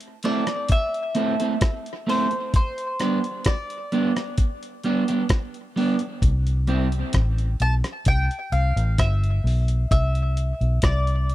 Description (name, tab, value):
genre	dub reggae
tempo	65 BPM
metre	4/4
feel	straight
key	C major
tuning	A4 = 436 Hz
part	dusty soul sampler-style drum kit	drums	0.0-11.3 s	hi-hat, kick drum, rim click	-22 LUFS	equal	none
part	mandolin	melody	0.2-11.3 s	C5 to A5	-28 LUFS	left 1 dB	tape echo
part	electric guitar at the edge of break-up	accompaniment	0.2-6.9 s	G3 to A4	-24 LUFS	right 2 dB	spring reverb, tape echo
part	vintage muted fingered electric bass	bass	6.2-11.3 s	G1 to C2	-21 LUFS	equal	none
room	little or no reverb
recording	dry, close 1970s-style studio recording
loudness	-20 LUFS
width	side -15 dB against mid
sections	0.0-11.3 A section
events	break 0.0-6.2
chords	0.0 Am; 2.5 G; 6.2 C